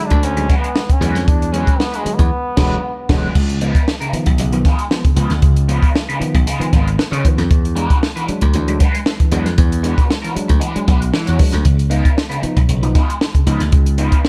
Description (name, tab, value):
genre	funk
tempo	116 BPM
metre	4/4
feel	straight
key	Db mixolydian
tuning	A4 = 439 Hz
part	bright trombone	melody	0.0-3.4 s	G#3 to D4	-25 LUFS	equal	none
part	raw garage guitar	accompaniment	0.0-14.3 s	G#3 to Db5	-28 LUFS	equal	wah, overdrive, phaser
part	overdriven tine electric piano	stabs	0.0-14.3 s	Db3 to Eb4	-26 LUFS	equal	none
part	slap bass	bass	0.1-14.1 s	E1 to E3	-20 LUFS	equal	none
part	compact cocktail drum kit	drums	0.1-14.3 s	crash cymbal, hi-hat, kick drum, snare drum	-17 LUFS	equal	none
room	light reverb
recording	none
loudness	-16 LUFS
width	mono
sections	0.0-3.4 A section; 3.4-14.3 B section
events	trombone solo 0.0-3.4; band accent 2.3-3.4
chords	0.0 E9; 3.4 Db9; 7.5 E9; 11.7 Db9